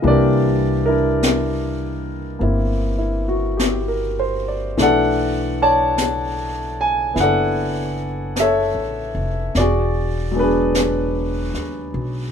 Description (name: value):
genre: jazz ballad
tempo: 50 BPM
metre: 4/4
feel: swing 66% on 8ths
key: unclear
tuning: A4 = 441 Hz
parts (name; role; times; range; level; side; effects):
- warm concert grand piano; accompaniment; 0.0-12.3 s; E3 to A5; -19 LUFS; left 1 dB; none
- upright bass; bass; 0.0-12.3 s; E1 to D#2; -23 LUFS; equal; none
- jazz brush drum kit; drums; 0.0-12.3 s; brushed snare drum, hi-hat, snare drum; -25 LUFS; left 2 dB; none
room: light reverb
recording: minimal, uncompressed stereo recording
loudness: -17 LUFS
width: side -7 dB against mid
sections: 0.0-12.3 A section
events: none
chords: 0.0 C9; 4.8 Bm11; 9.6 E9